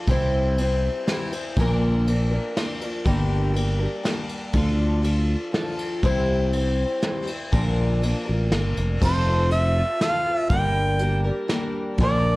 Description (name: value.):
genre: folk rock and heartland rock.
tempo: 121 BPM.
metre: 3/4.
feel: straight.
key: G dorian.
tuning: A4 = 440 Hz.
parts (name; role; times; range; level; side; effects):
picked twelve-string acoustic guitar; accompaniment; 0.0-12.4 s; G2 to C5; -26 LUFS; left 1 dB; wide subtle chorus.
fingered electric bass; bass; 0.1-12.4 s; F1 to D2; -22 LUFS; equal; none.
soft brush drum kit; drums; 0.1-12.1 s; crash cymbal, hi-hat, kick drum, ride cymbal, snare drum; -27 LUFS; equal; none.
clear harmonica; melody; 9.0-12.4 s; C5 to G5; -23 LUFS; right 1 dB; none.
room: light reverb.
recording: worn, warbling old tape, cassette tape, warbly pitch drift.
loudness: -20 LUFS.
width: side -21 dB against mid.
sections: 0.0-9.0 A section; 9.0-12.4 B section.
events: none.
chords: 0.1 C; 1.6 Bb; 3.1 Gm; 4.5 Dm; 6.0 C; 7.5 Bb; 9.0 F; 10.5 Gm.